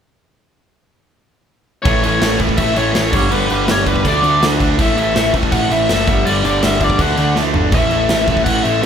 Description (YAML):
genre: punk rock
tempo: 163 BPM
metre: 4/4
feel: straight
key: A mixolydian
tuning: A4 = 440 Hz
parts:
  - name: biting lead guitar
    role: melody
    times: 1.8-8.9 s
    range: B4 to F#5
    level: -18 LUFS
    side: left 3 dB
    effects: overdrive
  - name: crunchy overdriven guitar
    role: riff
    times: 1.8-8.9 s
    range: G2 to D4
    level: -21 LUFS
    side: left 6 dB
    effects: none
  - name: raw garage guitar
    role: riff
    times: 1.9-8.9 s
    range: G2 to D4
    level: -19 LUFS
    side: right 8 dB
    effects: overdrive
  - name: growling picked electric bass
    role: bass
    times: 1.9-8.9 s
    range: F#1 to D2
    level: -21 LUFS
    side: right 1 dB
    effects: overdrive
  - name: big rock drum kit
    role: drums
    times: 1.9-8.9 s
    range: crash cymbal, kick drum, snare drum, toms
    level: -18 LUFS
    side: equal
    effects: none
room: light reverb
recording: band playing live in one room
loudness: -12 LUFS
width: side -8 dB against mid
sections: 1.9-8.9 A section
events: drum fill 7.4-7.7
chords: 1.9 A; 3.1 G5; 4.1 D5; 4.8 A5; 6.1 G5; 7.0 D; 7.7 A5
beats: | 1.86 2.22 2.59 2.95 | 3.32 3.69 4.05 4.42 | 4.79 5.16 5.52 5.89 | 6.26 6.63 6.99 7.36 | 7.73 8.10 8.47 8.84